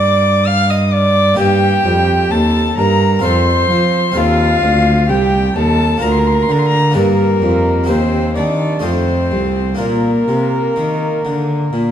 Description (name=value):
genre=classical, baroque-style sonata movement with continuo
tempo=64 BPM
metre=3/4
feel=straight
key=Bb major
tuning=A4 = 440 Hz
part: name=rich violin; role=melody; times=0.0-11.9 s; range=Bb4 to F6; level=-18 LUFS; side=left 6 dB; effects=none
part: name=dark violin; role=second line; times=0.0-11.9 s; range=Bb3 to F5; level=-18 LUFS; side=right 4 dB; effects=none
part: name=harpsichord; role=accompaniment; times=0.0-11.9 s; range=C2 to Bb4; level=-20 LUFS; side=equal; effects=none
part: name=dark cello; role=bass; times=0.0-11.9 s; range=C2 to F3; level=-15 LUFS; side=equal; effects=none
room=moderate recital hall reverb, RT60 1.6 s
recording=dark, warm production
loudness=-12 LUFS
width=side -9 dB against mid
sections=0.0-11.9 A section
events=none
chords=0.0 Gm; 1.4 Eb; 3.2 F; 4.2 F7; 6.0 Bb/D; 7.0 Gm; 7.9 Cm7/Eb; 8.8 F7; 9.8 Bb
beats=0.47 | 1.39 2.31 3.24 | 4.17 5.10 6.02 | 6.96 7.89 8.84 | 9.80 10.77 11.74